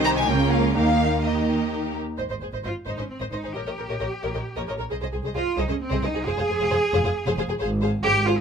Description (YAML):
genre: quick classical-period movement for string orchestra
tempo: 124-138 BPM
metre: 3/4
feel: rubato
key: Ab major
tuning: A4 = 440 Hz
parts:
  - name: rich studio violin section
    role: second line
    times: 0.0-8.4 s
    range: F4 to Db5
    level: -31 LUFS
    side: left 1 dB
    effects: none
  - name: rich studio viola section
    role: accompaniment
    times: 0.0-8.3 s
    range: Eb3 to C5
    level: -27 LUFS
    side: right 1 dB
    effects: none
  - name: rich studio cello section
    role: bass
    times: 0.0-8.4 s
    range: C3 to Ab4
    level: -26 LUFS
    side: right 2 dB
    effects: none
  - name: rich studio double bass section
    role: bass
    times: 0.0-8.4 s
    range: F1 to Eb2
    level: -27 LUFS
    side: right 1 dB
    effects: none
  - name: warm studio violin section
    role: melody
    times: 0.1-8.4 s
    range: C5 to Bb5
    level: -30 LUFS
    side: left 3 dB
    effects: none
room: light reverb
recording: none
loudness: -22 LUFS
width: side -6 dB against mid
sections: 0.0-2.2 A section; 2.2-8.4 B section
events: none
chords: 0.3 Bbm/Db; 0.8 Eb; 2.2 Ab; 3.6 Eb7/Bb; 4.9 Ab/C; 6.3 Fm; 7.6 Fm/Ab